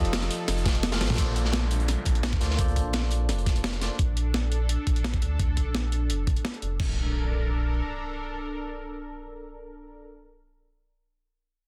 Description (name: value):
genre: liquid drum and bass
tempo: 171 BPM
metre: 4/4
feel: straight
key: Bb major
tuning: A4 = 440 Hz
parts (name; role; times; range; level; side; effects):
- tine electric piano; accompaniment; 0.0-4.0 s; F3 to F5; -37 LUFS; equal; digital delay
- lush unison pad; sustained chords; 0.0-10.0 s; F3 to Bb4; -40 LUFS; equal; chorus, phaser, sidechain pumping
- sub bass with octave; bass; 0.0-7.8 s; F1 to D2; -29 LUFS; equal; tube saturation
- breakbeat sampler-style drum kit; drums; 0.0-6.9 s; crash cymbal, hi-hat, ride cymbal, snare drum, toms; -34 LUFS; equal; none
- crunchy breakbeat drum kit; drums; 0.1-3.9 s; hi-hat, snare drum; -36 LUFS; equal; high-pass filter on hats, high-pass filter on snare, high-pass filter on room
- electronic kick drum; drums; 0.7-6.9 s; none; -28 LUFS; equal; none
- downlifter and impact; sound effects; 1.2-4.0, 6.8-10.0 s; none; -40 LUFS; equal; none
room: light reverb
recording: dense, heavily limited modern master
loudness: -27 LUFS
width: mono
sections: 0.0-1.2 A section; 1.2-6.8 B section; 6.8-9.6 C section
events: drop 0.0-1.2; drum fill 0.9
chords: 0.0 F7; 1.2 Bbmaj7